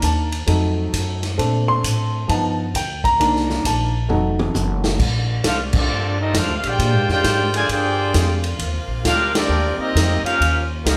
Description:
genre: jazz, big band swing.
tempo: 133 BPM.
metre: 4/4.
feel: swing 65% on 8ths.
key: Bb major.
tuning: A4 = 440 Hz.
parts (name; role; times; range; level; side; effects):
warm concert grand piano; accompaniment; 0.0-5.0 s; Eb3 to C6; -23 LUFS; equal; none.
upright bass; bass; 0.0-11.0 s; F1 to Bb2; -24 LUFS; equal; none.
vintage drum kit; drums; 0.0-11.0 s; crash cymbal, hi-hat, kick drum, ride cymbal, snare drum, toms; -26 LUFS; equal; none.
bright saxophone section; sustained chords; 5.0-11.0 s; Bb2 to F4; -34 LUFS; equal; none.
bright trombone section; second line; 5.4-11.0 s; D3 to Ab4; -28 LUFS; equal; none.
clear trumpet section; melody; 5.5-11.0 s; C4 to Ab5; -23 LUFS; equal; none.
room: moderate large studio reverb, RT60 0.8 s.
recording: band playing live in one room.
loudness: -19 LUFS.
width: mono.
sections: 0.0-5.0 A section; 5.0-11.0 B section.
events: grand piano solo 0.0-5.0; drum fill 4.1-5.0; band accent 5.7, 9.3.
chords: 0.5 F7b9; 1.4 Bbmaj9; 2.3 G7b13; 3.2 Cm7; 4.1 F7b9; 5.0 Bbmaj9; 6.8 Bb13; 8.6 Eb6; 10.4 Eb9.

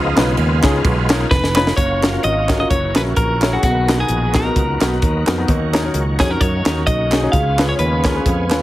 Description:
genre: uptempo gospel.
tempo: 130 BPM.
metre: 4/4.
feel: swing 56% on 8ths.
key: F# major.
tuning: A4 = 441 Hz.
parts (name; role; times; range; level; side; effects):
warm baby grand piano; accompaniment; 0.0-8.6 s; B2 to C#5; -21 LUFS; left 2 dB; none.
bright tonewheel organ; sustained chords; 0.0-8.6 s; D#3 to G#4; -25 LUFS; right 1 dB; slow rotary speaker, overdrive, chorus vibrato.
fingered electric bass; bass; 0.0-8.6 s; E#1 to F#2; -20 LUFS; equal; none.
crisp fusion drum kit; drums; 0.2-8.6 s; hi-hat, kick drum, ride cymbal, snare drum; -19 LUFS; equal; none.
group handclap; percussion; 0.2-8.6 s; none; -26 LUFS; right 4 dB; none.
clean electric guitar; melody; 1.3-8.6 s; F#4 to E#5; -20 LUFS; equal; none.
mellow French horn section; sustained chords; 1.8-8.6 s; F#3 to E#5; -29 LUFS; right 1 dB; none.
room: light reverb, small room ambience.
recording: heavily compressed radio sound, multiband compression.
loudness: -14 LUFS.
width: side -15 dB against mid.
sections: 0.0-1.8 A section; 1.8-8.6 B section.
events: tonewheel organ solo 0.0-1.8; drum fill 1.3-1.8.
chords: 0.0 C#9; 1.8 F#maj7; 2.7 F#7; 3.6 Bmaj7; 5.5 D#m7; 7.3 C#7.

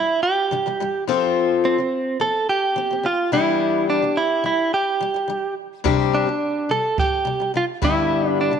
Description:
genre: acoustic pop.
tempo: 107 BPM.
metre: 4/4.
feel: straight.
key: C major.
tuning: A4 = 440 Hz.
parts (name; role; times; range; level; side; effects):
direct-recorded clean electric guitar; melody; 0.0-8.6 s; C4 to A4; -20 LUFS; right 3 dB; none.
picked steel-string acoustic guitar; accompaniment; 0.0-8.6 s; G2 to A4; -22 LUFS; left 7 dB; none.
kick drum; drums; 5.9-8.0 s; none; -24 LUFS; right 4 dB; none.
room: moderate echo chamber reverb, RT60 2.0 s.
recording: 1960s-style stereo.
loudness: -18 LUFS.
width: side -7 dB against mid.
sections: 0.0-8.6 A section.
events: none.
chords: 0.0 G5; 1.1 F; 3.3 Em7; 5.9 Csus2; 7.8 G6.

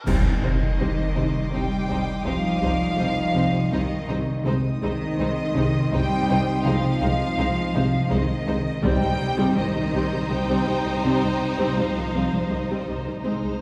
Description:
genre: cinematic, suspense film score.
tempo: 82 BPM.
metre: 3/4.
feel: straight.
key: C minor.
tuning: A4 = 440 Hz.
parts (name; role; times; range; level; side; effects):
rich studio violin section; second line; 0.1-13.6 s; Eb4 to C5; -34 LUFS; equal; none.
warm studio viola section; accompaniment; 0.1-13.5 s; Eb3 to C4; -31 LUFS; equal; none.
mellow French horn section; sustained chords; 0.1-13.5 s; G3 to Eb4; -33 LUFS; equal; none.
warm studio cello section; riff; 0.1-13.6 s; C3 to C4; -30 LUFS; equal; none.
rich studio double bass section; bass; 0.1-13.5 s; C2; -32 LUFS; equal; none.
clash cymbals and concert bass drum; percussion; 0.1-1.5 s; none; -29 LUFS; equal; none.
timpani; percussion; 0.1-1.1, 8.8-9.9 s; C3; -36 LUFS; equal; none.
impact; sound effects; 0.1-2.3 s; none; -33 LUFS; equal; none.
rich studio violin section; texture; 0.1-13.6 s; C6 to G6; -42 LUFS; equal; none.
rich studio violin section; melody; 0.4-13.2 s; Eb5 to G5; -32 LUFS; equal; none.
rich studio cello section; bass; 0.4-13.2 s; Eb3 to G3; -30 LUFS; equal; none.
room: wet concert hall reverb, RT60 2.3 s.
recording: heard from further back in the room.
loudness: -23 LUFS.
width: mono.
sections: 0.1-13.6 A section.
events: band accent 0.1-0.8; impact 0.1-2.3.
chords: 0.1 Cm; 4.4 Ab/C; 8.8 Cm.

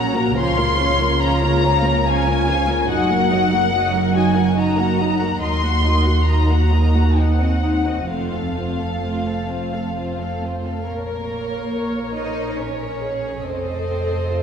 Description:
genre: classical, slow romantic movement for string orchestra.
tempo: 64-73 BPM.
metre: 3/4.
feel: rubato.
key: Bb minor.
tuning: A4 = 440 Hz.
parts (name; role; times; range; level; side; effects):
dark studio violin section; melody; 0.0-14.4 s; F4 to C6; -23 LUFS; left 3 dB; none.
warm studio violin section; second line; 0.0-14.4 s; Eb4 to Bb5; -27 LUFS; left 1 dB; none.
dark studio viola section; accompaniment; 0.0-14.4 s; F3 to Eb5; -24 LUFS; left 1 dB; none.
dark studio double bass section; bass; 0.0-14.4 s; F1 to Eb2; -22 LUFS; right 1 dB; none.
warm studio cello section; bass; 0.0-14.4 s; Eb2 to Eb4; -25 LUFS; right 3 dB; none.
room: wet concert hall reverb, RT60 2.3 s.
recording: heard from further back in the room.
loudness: -17 LUFS.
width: side -7 dB against mid.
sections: 0.0-10.9 A section; 10.9-14.4 B section.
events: none.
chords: 0.4 Bbm/Db; 2.9 Ebm/Gb; 5.4 Ebm; 7.2 Cdim/Eb; 8.1 F; 10.9 Bbm; 13.4 F7.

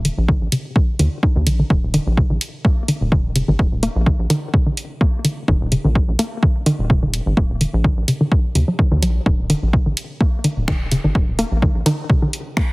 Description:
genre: minimal techno.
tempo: 127 BPM.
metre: 4/4.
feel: swing 54% on 16ths.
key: unclear.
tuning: A4 = 439 Hz.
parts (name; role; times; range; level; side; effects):
hollow square pluck; riff; 0.0-12.6 s; Db3 to Eb4; -20 LUFS; equal; chorus, vintage 12-bit sampler grit, sidechain pumping, ping-pong delay.
rubbery square bass; bass; 0.0-11.8 s; Eb1 to Eb2; -20 LUFS; equal; sidechain pumping.
techno drum kit; drums; 0.0-12.7 s; finger snaps, hi-hat; -25 LUFS; right 1 dB; none.
electronic kick drum; drums; 0.3-12.7 s; none; -17 LUFS; equal; overdrive.
room: little or no reverb.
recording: heavily compressed radio sound, multiband compression.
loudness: -16 LUFS.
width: side -25 dB against mid.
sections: 0.0-12.7 A section.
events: filter sweep on synth arpeggio sound 0.0-12.7.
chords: 0.0 Eb5.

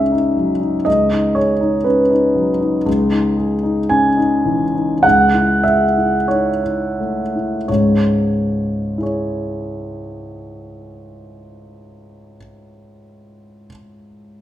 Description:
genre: classical, impressionist solo piano.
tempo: 40-61 BPM.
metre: 4/4.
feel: rubato.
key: C# minor.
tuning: A4 = 440 Hz.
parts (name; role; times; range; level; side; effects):
clear grand piano; solo; 0.0-14.4 s; C#2 to G#5; -14 LUFS; equal; none.
room: wet recital hall reverb, RT60 1.5 s.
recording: minimal, uncompressed stereo recording.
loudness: -14 LUFS.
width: side -12 dB against mid.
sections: 0.0-7.7 A section; 7.7-12.9 B section.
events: slowing down 0.0-7.7.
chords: 0.0 C#madd9; 5.0 Amaj7/C#; 7.7 C#m.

